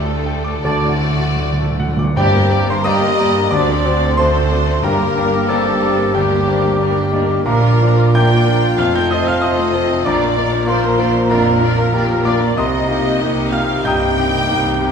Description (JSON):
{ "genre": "classical, romantic movement for piano and orchestra", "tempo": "92 BPM", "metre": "4/4", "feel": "uneven beats, rubato", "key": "G minor", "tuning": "A4 = 440 Hz", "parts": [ { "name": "clear grand piano", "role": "melody", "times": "0.0-14.9 s", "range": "Bb1 to G6", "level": "-18 LUFS", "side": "left 1 dB", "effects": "none" }, { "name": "warm studio violin section", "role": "melody", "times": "0.0-14.9 s", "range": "F4 to D5", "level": "-26 LUFS", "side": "left 3 dB", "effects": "none" }, { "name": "rich studio violin section", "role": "second line", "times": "0.0-14.9 s", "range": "D4 to G5", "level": "-24 LUFS", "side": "left 3 dB", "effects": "none" }, { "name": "rich studio viola section", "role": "accompaniment", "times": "0.0-14.9 s", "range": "F3 to G4", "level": "-26 LUFS", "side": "right 2 dB", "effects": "none" }, { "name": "clear studio double bass section", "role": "bass", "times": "0.0-14.9 s", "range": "F1 to D2", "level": "-23 LUFS", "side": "right 3 dB", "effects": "none" }, { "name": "rich studio cello section", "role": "bass", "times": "0.0-14.9 s", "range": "D2 to C3", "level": "-22 LUFS", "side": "right 4 dB", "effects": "none" }, { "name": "mellow bassoon", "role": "accompaniment", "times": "0.6-14.8 s", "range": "D3 to G4", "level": "-25 LUFS", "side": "right 1 dB", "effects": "none" }, { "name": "mellow French horn section", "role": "sustained chords", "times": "0.6-14.9 s", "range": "A3 to G4", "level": "-23 LUFS", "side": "left 4 dB", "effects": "none" }, { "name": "mellow trumpet section", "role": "stabs", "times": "0.6-0.9 s", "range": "D5", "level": "-26 LUFS", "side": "right 4 dB", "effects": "none" }, { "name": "dark clarinet", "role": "second line", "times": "0.7-14.1 s", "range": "F4 to G4", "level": "-26 LUFS", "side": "left 1 dB", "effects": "none" }, { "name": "mellow hollow concert flute", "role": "second line", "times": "0.7-14.2 s", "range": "A5 to D6", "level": "-27 LUFS", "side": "left 1 dB", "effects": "none" }, { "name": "warm oboe", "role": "second line", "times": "0.7-14.9 s", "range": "G4 to G5", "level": "-25 LUFS", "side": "right 2 dB", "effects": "none" }, { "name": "timpani", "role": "percussion", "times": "0.7-5.8 s", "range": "G2 to D3", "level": "-22 LUFS", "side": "right 1 dB", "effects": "none" } ], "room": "wet recital hall reverb, RT60 1.4 s", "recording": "recorded in a church or concert hall", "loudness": "-13 LUFS", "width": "side -6 dB against mid", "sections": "0.0-2.2 A section; 2.2-14.9 B section", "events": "timpani fill 0.7-2.2", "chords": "0.0 Dsus4; 0.7 D; 2.2 Gm; 3.5 D7; 4.8 Gm; 7.5 Bb; 8.8 F7; 10.1 Bb; 12.6 Cm7", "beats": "0.66 1.43 | 2.17 2.85 3.52 4.18 | 4.83 5.48 6.14 6.80 | 7.45 8.15 8.79 9.42 | 10.05 10.68 11.30 11.94 | 12.57 13.21 13.84 14.48" }